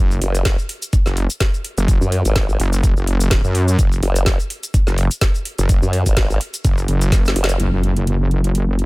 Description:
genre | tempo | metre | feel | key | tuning
bass house | 126 BPM | 4/4 | swing 55% on 16ths | unclear | A4 = 438 Hz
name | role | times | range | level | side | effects
wobble bass | bass | 0.0-8.9 s | F#1 to F#2 | -17 LUFS | equal | chorus, tube saturation, sidechain pumping
garage drum kit | drums | 0.1-8.9 s | cabasa, hi-hat, snare drum | -24 LUFS | equal | none
formant-sweep wobble bass | bass | 0.2-7.6 s | F#1 to F#2 | -17 LUFS | equal | chorus, tube saturation, sidechain pumping
electronic kick drum | drums | 0.5-7.2 s | none | -16 LUFS | equal | none
impact | sound effects | 7.6-8.9 s | none | -28 LUFS | equal | none
room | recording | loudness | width
little or no reverb | none | -15 LUFS | side -23 dB against mid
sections
0.0-7.6 A section; 7.6-8.9 B section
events
drop 0.0-7.6; drum fill 7.1-7.6; band accent 7.4; impact 7.6-8.9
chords
none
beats
0.45 0.93 1.41 | 1.88 2.36 2.83 3.31 | 3.79 4.26 4.74 5.22 | 5.69 6.17 6.64 7.12 | 7.60 8.07 8.55

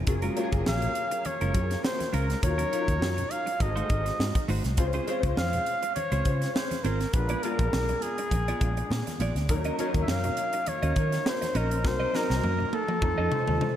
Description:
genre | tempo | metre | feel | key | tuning
polished 1980s jazz-funk pop | 102 BPM | 4/4 | swing 54% on 16ths | unclear | A4 = 436 Hz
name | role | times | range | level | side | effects
warm grand piano | accompaniment | 0.0-13.8 s | F3 to C5 | -33 LUFS | left 3 dB | ensemble chorus
vintage muted fingered electric bass | bass | 0.0-13.6 s | Gb1 to Eb3 | -29 LUFS | equal | none
clean electric guitar | riff | 0.1-13.7 s | Gb3 to Eb5 | -36 LUFS | right 3 dB | wide subtle chorus
crisp fusion drum kit | drums | 0.1-13.8 s | hi-hat, kick drum, snare drum, toms | -30 LUFS | equal | none
congas | percussion | 0.1-13.8 s | none | -42 LUFS | right 1 dB | none
warm flugelhorn | melody | 0.7-13.8 s | Ab4 to F5 | -30 LUFS | equal | analog delay
room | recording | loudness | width
moderate lush hall reverb, RT60 2.6 s | dreamy mix soaked in reverb | -25 LUFS | side -11 dB against mid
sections
0.0-13.8 A section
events
drum fill 11.8-13.8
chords
0.1 Gbmaj9; 2.4 Ebm9; 3.6 Ab7b9; 4.8 Dbmaj7; 7.1 Bb7b9; 9.5 Ebm7; 11.8 Cm7b5; 13.0 F7b13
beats
| 0.07 0.66 1.25 1.84 | 2.43 3.02 3.60 4.19 | 4.78 5.37 5.96 6.55 | 7.14 7.73 8.31 8.90 | 9.49 10.08 10.67 11.26 | 11.85 12.44 13.03 13.62

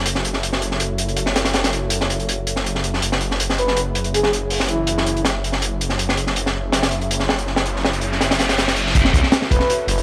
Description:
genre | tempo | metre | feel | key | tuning
drum and bass, jungle | 162 BPM | 4/4 | straight | F# minor | A4 = 441 Hz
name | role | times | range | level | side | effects
warbly tape-like pad | sustained chords | 0.0-10.0 s | C#4 to E5 | -32 LUFS | equal | chorus, built-in reverb
detuned saw bass | bass | 0.0-10.0 s | E1 to C#2 | -26 LUFS | equal | none
crunchy breakbeat drum kit | drums | 0.1-10.0 s | crash cymbal, hi-hat, kick drum, snare drum | -22 LUFS | equal | high-pass filter on kick, high-pass filter on hats, high-pass filter on cymbals, high-pass filter on snare, high-pass filter on room
breathy flute-like synth lead | melody | 3.6-5.2, 9.5-9.7 s | E4 to B4 | -24 LUFS | equal | subtle chorus, cassette tape, dub echo
riser | sound effects | 7.0-8.9 s | none | -29 LUFS | equal | none
room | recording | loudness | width
moderate lush hall reverb, RT60 1.9 s, studio ambience | dry, gritty hardware recording, vinyl crackle | -20 LUFS | mono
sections
0.0-8.9 A section; 8.9-10.0 B section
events
riser 7.0-8.9; drop 8.9-10.0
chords
0.0 F#m7; 3.0 C#m/F#; 8.9 F#m7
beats
| 0.06 0.43 0.80 1.17 | 1.54 1.91 2.28 2.65 | 3.02 3.39 3.76 4.13 | 4.50 4.88 5.25 5.62 | 5.99 6.36 6.73 7.10 | 7.47 7.84 8.21 8.58 | 8.95 9.32 9.69

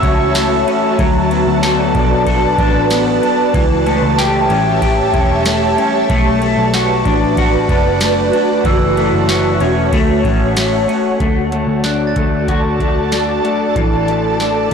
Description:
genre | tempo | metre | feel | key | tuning
dream pop | 94 BPM | 4/4 | straight | D major | A4 = 440 Hz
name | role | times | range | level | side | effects
ethereal airy pad | sustained chords | 0.0-14.7 s | E4 to A5 | -16 LUFS | right 2 dB | ensemble chorus, built-in reverb, tremolo
electric guitar at the edge of break-up | arpeggios | 0.0-14.7 s | E3 to A4 | -17 LUFS | left 4 dB | analog chorus, ping-pong delay
vintage muted picked electric bass | bass | 0.0-14.7 s | E1 to D2 | -20 LUFS | right 1 dB | tube saturation
booming analog drum machine | drums | 0.0-14.7 s | hi-hat, kick drum, ride cymbal, snare drum, tambourine | -19 LUFS | right 1 dB | none
glockenspiel with hard plastic mallets | texture | 0.0-0.5, 8.7-12.8 s | E6 to A6 | -27 LUFS | right 4 dB | ping-pong delay
room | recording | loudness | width
moderate lush hall reverb, RT60 2.2 s | blown-out, overdriven recording, overdrive | -12 LUFS | side -6 dB against mid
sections
0.0-11.2 A section; 11.2-14.7 B section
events
none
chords
0.0 F#m7; 1.0 D6; 3.5 A7; 6.1 Bm7; 8.7 F#m7; 9.9 Dmaj7; 11.2 D; 13.8 Asus4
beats
0.35 | 0.99 1.63 2.27 2.91 | 3.54 4.18 4.82 5.46 | 6.10 6.74 7.38 8.01 | 8.65 9.29 9.93 10.57 | 11.20 11.84 12.48 13.12 | 13.76 14.40

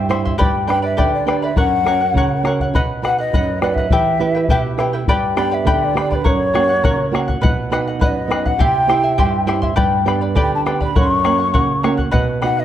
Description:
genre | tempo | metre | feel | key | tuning
andean folk, Andean ensemble | 102 BPM | 2/4 | straight | unclear | A4 = 440 Hz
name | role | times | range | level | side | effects
breathy mellow large quena | melody | 0.0-12.6 s | B4 to C#6 | -19 LUFS | left 1 dB | none
charango | accompaniment | 0.0-12.6 s | E4 to C6 | -21 LUFS | left 3 dB | none
nylon-string guitar | accompaniment | 0.0-12.6 s | F#2 to E5 | -20 LUFS | right 4 dB | none
bombo | percussion | 0.1-12.6 s | none | -20 LUFS | left 1 dB | none
room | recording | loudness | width
moderate recital hall reverb, RT60 1.6 s | none | -14 LUFS | side -11 dB against mid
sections
0.0-5.1 A section; 5.1-12.6 A section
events
nylon-string guitar fill 4.2-5.1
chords
0.4 G; 1.6 F#; 2.7 B; 3.9 Em; 5.1 G; 6.3 F#; 7.4 B; 8.6 C; 9.8 G; 11.0 F#; 12.1 B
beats
| 0.39 0.97 | 1.56 2.15 | 2.73 3.32 | 3.91 4.50 | 5.08 5.67 | 6.25 6.84 | 7.43 8.02 | 8.60 9.19 | 9.78 10.37 | 10.96 11.55 | 12.14

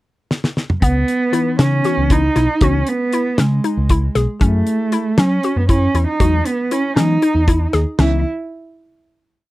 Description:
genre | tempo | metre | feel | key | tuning
progressive instrumental, band music in an uneven meter | 234 BPM (eighths) | 7/8 | straight | C# minor | A4 = 439 Hz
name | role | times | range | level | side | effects
damped 70s drum kit | drums | 0.3-8.1 s | crash cymbal, hi-hat, kick drum, snare drum, toms | -17 LUFS | equal | none
dark cello | melody | 0.8-8.2 s | G#3 to E4 | -18 LUFS | right 2 dB | none
hollow square pluck | arpeggios | 0.8-8.2 s | B3 to G#4 | -22 LUFS | left 3 dB | chorus
picked electric bass | bass | 0.8-8.2 s | B1 to F#3 | -17 LUFS | equal | none
bell-like tine electric piano | accompaniment | 1.3-8.2 s | E3 to G#4 | -24 LUFS | left 8 dB | phaser
room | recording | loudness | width
little or no reverb | dry, close 1970s-style studio recording | -14 LUFS | side -17 dB against mid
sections
0.0-0.8 pickup bar; 0.8-8.0 groove; 8.0-9.5 final chord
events
drum fill 0.3-0.8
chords
0.0 N.C.; 0.8 C#m7; 4.4 F#m7; 6.2 Emaj7; 8.0 C#m7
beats
0.05 0.31 0.57 | 0.82 1.08 1.34 1.59 1.85 2.11 2.36 | 2.62 2.87 3.13 3.39 3.64 3.90 4.15 | 4.41 4.67 4.92 5.18 5.43 5.69 5.94 | 6.20 6.46 6.71 6.97 7.22 7.48 7.74 | 7.99

